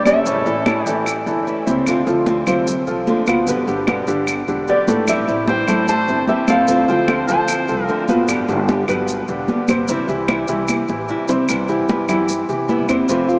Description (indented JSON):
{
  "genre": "latin, Cuban son and guajira",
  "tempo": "150 BPM",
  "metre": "4/4",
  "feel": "straight",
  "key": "C major",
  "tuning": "A4 = 440 Hz",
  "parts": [
    { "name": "nylon-string guitar", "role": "melody", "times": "0.0-1.2, 4.7-8.1 s", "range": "D5 to A5", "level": "-24 LUFS", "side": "equal", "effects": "none" },
    { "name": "clear trumpet", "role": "second line", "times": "0.0-1.2, 4.7-8.0 s", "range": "G4 to C5", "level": "-29 LUFS", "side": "equal", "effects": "none" },
    { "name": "nylon-string guitar", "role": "accompaniment", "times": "0.0-13.4 s", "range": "B2 to G4", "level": "-25 LUFS", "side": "equal", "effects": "none" },
    { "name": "clear baby grand piano", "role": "arpeggios", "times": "0.1-13.4 s", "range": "A2 to Db5", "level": "-23 LUFS", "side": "equal", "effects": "tape echo" },
    { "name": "upright bass", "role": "bass", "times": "0.1-13.4 s", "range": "E1 to C3", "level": "-30 LUFS", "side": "equal", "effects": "none" },
    { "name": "claves", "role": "percussion", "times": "0.1-13.1 s", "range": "none", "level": "-31 LUFS", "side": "equal", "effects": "none" },
    { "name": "congas", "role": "percussion", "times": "0.1-13.4 s", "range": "none", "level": "-26 LUFS", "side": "equal", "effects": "none" },
    { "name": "maracas", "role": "percussion", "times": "0.1-13.4 s", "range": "none", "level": "-35 LUFS", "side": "equal", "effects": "none" }
  ],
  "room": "wet huge ambient reverb, RT60 9.1 s",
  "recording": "in a vast, echoing space, small speaker sound",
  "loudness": "-18 LUFS",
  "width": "mono",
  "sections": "0.0-11.5 A section; 11.5-13.4 B section",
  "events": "drum fill 10.7-11.5",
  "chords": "0.3 A; 1.9 Dm7; 3.5 G; 5.1 Am7; 6.7 Dm7; 8.3 G; 9.9 C; 11.5 Cmaj7"
}